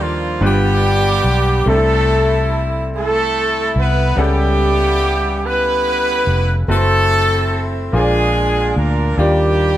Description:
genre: slow gospel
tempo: 48 BPM (dotted quarters)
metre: 6/8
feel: straight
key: unclear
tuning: A4 = 441 Hz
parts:
  - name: warm horn section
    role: melody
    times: 0.0-9.8 s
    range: F3 to B4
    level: -16 LUFS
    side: right 1 dB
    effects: slapback echo
  - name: bright grand piano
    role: accompaniment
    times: 0.0-9.8 s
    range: G2 to F#5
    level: -22 LUFS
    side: left 1 dB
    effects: none
  - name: vintage muted fingered electric bass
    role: bass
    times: 0.0-9.8 s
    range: F1 to Eb2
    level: -18 LUFS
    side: equal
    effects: none
room: moderate large studio reverb, RT60 0.8 s, small room ambience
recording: none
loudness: -13 LUFS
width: side -13 dB against mid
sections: 0.0-9.8 A section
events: none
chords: 0.4 G7; 1.7 C6; 4.2 A13/C#; 6.7 F#m7b5; 7.9 Bb7; 9.2 Ebmaj9

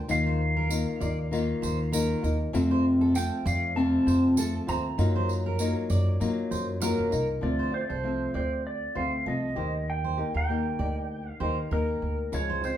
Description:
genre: acoustic pop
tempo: 98 BPM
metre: 4/4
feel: swing 55% on 16ths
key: unclear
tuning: A4 = 439 Hz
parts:
  - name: nylon-string guitar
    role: accompaniment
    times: 0.0-12.8 s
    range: F2 to G4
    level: -28 LUFS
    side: left 2 dB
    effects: none
  - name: upright bass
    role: bass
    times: 0.0-12.7 s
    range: C2 to Gb3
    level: -30 LUFS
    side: right 1 dB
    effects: none
  - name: clean lap steel guitar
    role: melody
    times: 0.1-12.8 s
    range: Bb4 to Bb5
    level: -33 LUFS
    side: right 1 dB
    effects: none
  - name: tambourine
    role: percussion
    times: 0.1-7.3, 12.3-12.8 s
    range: none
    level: -40 LUFS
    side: right 5 dB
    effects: none
  - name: fingerpicked steel-string acoustic guitar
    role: arpeggios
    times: 0.3-12.6 s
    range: A4 to D5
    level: -36 LUFS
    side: right 4 dB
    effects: none
room: wet studio reverb, RT60 0.6 s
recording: heard from further back in the room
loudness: -25 LUFS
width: side -11 dB against mid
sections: 0.0-7.4 A section; 7.4-12.8 B section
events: none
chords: 0.1 Ebsus2; 2.5 F; 5.0 Ebmadd9/Gb; 7.4 Dm7; 9.6 Eb

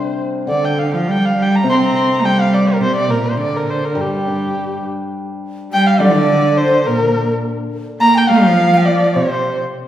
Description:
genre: chinese traditional, Chinese chamber ensemble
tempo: 104 BPM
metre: 2/4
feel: straight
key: G yu mode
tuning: A4 = 439 Hz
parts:
  - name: dark erhu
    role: melody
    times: 0.0-9.6 s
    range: G4 to C6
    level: -18 LUFS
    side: equal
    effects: none
  - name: hammered dulcimer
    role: accompaniment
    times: 0.0-7.7 s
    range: C3 to D4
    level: -23 LUFS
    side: left 3 dB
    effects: none
  - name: rich cello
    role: second line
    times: 0.5-9.6 s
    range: G2 to C4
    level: -16 LUFS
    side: right 2 dB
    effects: none
  - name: breathy bright xiao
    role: second line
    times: 5.7-9.6 s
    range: Bb4 to Bb5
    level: -18 LUFS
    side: left 2 dB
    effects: none
room: wet recital hall reverb, RT60 1.8 s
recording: heard from further back in the room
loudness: -13 LUFS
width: side -11 dB against mid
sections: 0.0-5.1 A section; 5.1-9.9 B section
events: none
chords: none

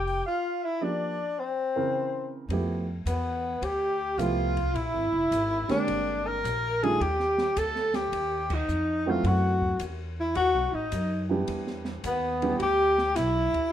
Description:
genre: jazz, small-group swing and bop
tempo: 107 BPM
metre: 4/4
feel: swing 67% on 8ths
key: unclear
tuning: A4 = 441 Hz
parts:
  - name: warm tenor saxophone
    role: melody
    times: 0.0-13.7 s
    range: B3 to Bb4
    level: -27 LUFS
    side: left 3 dB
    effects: none
  - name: mellow alto saxophone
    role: second line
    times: 0.0-13.7 s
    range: B3 to G5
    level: -32 LUFS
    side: right 5 dB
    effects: none
  - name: upright bass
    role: bass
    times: 0.0-13.6 s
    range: F1 to F#2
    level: -32 LUFS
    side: equal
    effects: none
  - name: open jazz drum kit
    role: drums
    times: 0.1-13.6 s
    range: crash cymbal, hi-hat, kick drum, ride cymbal, snare drum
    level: -38 LUFS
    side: left 1 dB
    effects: none
  - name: dark baby grand piano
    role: accompaniment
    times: 0.8-12.6 s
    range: Db3 to Bb4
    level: -30 LUFS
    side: right 3 dB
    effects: none
room: light reverb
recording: minimal, uncompressed stereo recording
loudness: -25 LUFS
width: side -10 dB against mid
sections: 0.0-2.5 A section; 2.5-13.7 B section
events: band accent 8.4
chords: 0.2 Gm7; 1.4 C7b9; 2.5 Fmaj9#11; 4.8 Bb13; 7.0 Ebmaj9#11; 9.2 F#m7b5; 10.4 B7; 11.5 Em7

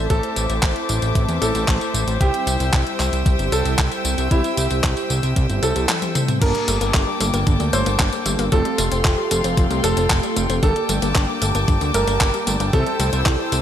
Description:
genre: italo disco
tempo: 114 BPM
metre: 4/4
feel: straight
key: unclear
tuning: A4 = 440 Hz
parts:
  - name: rich chamber string section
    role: sustained chords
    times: 0.0-13.6 s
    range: Bb3 to E6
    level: -26 LUFS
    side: left 2 dB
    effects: none
  - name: mellow synth brass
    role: stabs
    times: 0.0-13.6 s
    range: G3 to A5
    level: -27 LUFS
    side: right 2 dB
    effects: chorus, phaser
  - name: fat analog bass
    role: bass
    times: 0.0-13.6 s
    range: F1 to E2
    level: -22 LUFS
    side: equal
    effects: tube saturation
  - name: clear grand piano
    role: melody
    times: 0.1-13.1 s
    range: E4 to C5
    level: -26 LUFS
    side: right 1 dB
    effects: ping-pong delay
  - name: clean 12-bit digital drum machine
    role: drums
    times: 0.1-13.6 s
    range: crash cymbal, handclaps, hi-hat, tambourine, toms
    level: -24 LUFS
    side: left 1 dB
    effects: overdrive, studio ambience
  - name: electronic kick drum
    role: drums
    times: 0.1-13.4 s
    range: none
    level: -19 LUFS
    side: equal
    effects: overdrive, studio ambience
  - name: analog pluck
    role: arpeggios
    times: 6.4-13.6 s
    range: D3 to C4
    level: -29 LUFS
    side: left 2 dB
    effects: chorus, ping-pong delay
room: light reverb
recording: none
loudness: -17 LUFS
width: side -10 dB against mid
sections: 0.0-6.4 A section; 6.4-13.6 B section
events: drum fill 5.9-6.4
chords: 0.0 Am; 2.2 C; 6.4 Gmadd9; 8.5 Fadd9; 10.6 Gmadd9; 12.7 C6

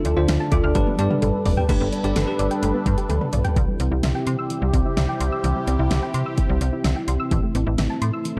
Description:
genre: synth-pop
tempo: 128 BPM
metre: 4/4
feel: straight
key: C major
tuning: A4 = 440 Hz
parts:
  - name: sweeping resonant pad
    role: sustained chords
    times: 0.0-8.4 s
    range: C3 to B4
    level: -28 LUFS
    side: equal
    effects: chorus
  - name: soft round pluck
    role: arpeggios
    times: 0.0-8.4 s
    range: E3 to F6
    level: -32 LUFS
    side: equal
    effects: chorus, analog delay
  - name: deep house drum kit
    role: drums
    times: 0.0-8.4 s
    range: crash cymbal, hi-hat, kick drum, snare drum, toms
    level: -26 LUFS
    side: equal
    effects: none
  - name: slap-like FM bass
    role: bass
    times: 0.1-8.4 s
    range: F1 to C3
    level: -25 LUFS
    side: equal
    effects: none
  - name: bell-like tine electric piano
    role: accompaniment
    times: 0.2-2.7 s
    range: D4 to D5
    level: -29 LUFS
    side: equal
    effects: none
room: light reverb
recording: dark, warm production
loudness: -22 LUFS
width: mono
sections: 0.0-1.7 A section; 1.7-3.6 B section; 3.6-8.4 C section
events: drum fill 0.8-1.7, 3.1-3.6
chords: 0.0 Dm; 0.8 Gadd9; 3.6 C; 7.3 Am

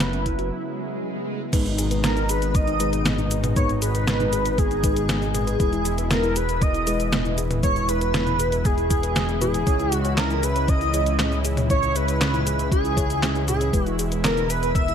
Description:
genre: synthwave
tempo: 118 BPM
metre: 4/4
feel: straight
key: unclear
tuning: A4 = 438 Hz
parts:
  - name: wide unison lead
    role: melody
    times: 0.0-14.9 s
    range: G#4 to E5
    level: -26 LUFS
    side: equal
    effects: wide subtle chorus, digital delay
  - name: lush unison pad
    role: sustained chords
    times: 0.0-14.9 s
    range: B2 to E4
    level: -31 LUFS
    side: left 1 dB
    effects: chorus, sidechain pumping
  - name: soft round pluck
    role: arpeggios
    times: 0.0-14.9 s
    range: B3 to G#5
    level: -32 LUFS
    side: right 3 dB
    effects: chorus, digital delay
  - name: fat analog bass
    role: bass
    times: 0.0-14.9 s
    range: E1 to C#2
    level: -26 LUFS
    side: equal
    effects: sidechain pumping
  - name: detuned 8-bit digital drum machine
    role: drums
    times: 0.0-14.9 s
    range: cabasa, crash cymbal, handclaps, hi-hat, snare drum, toms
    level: -27 LUFS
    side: left 1 dB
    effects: overdrive, gated reverb
  - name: electronic kick drum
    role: drums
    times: 0.3-14.9 s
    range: none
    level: -22 LUFS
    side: equal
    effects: overdrive
  - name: swell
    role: sound effects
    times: 0.7-1.5 s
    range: none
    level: -33 LUFS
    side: right 1 dB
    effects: none
  - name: mellow FM electric piano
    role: stabs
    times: 1.5-14.9 s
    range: G#3 to C#5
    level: -32 LUFS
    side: left 3 dB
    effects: chorus, digital delay
  - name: airy dreamy lead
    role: second line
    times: 2.0-14.9 s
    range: G#4 to E5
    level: -32 LUFS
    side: equal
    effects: chorus, phaser, digital delay
room: light reverb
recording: none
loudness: -20 LUFS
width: side -8 dB against mid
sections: 0.0-1.5 A section; 1.5-14.9 B section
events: break 0.5-1.5; swell 0.7-1.5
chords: 0.0 F#7sus4; 1.5 G#m; 5.6 E; 9.7 C#m; 13.7 E

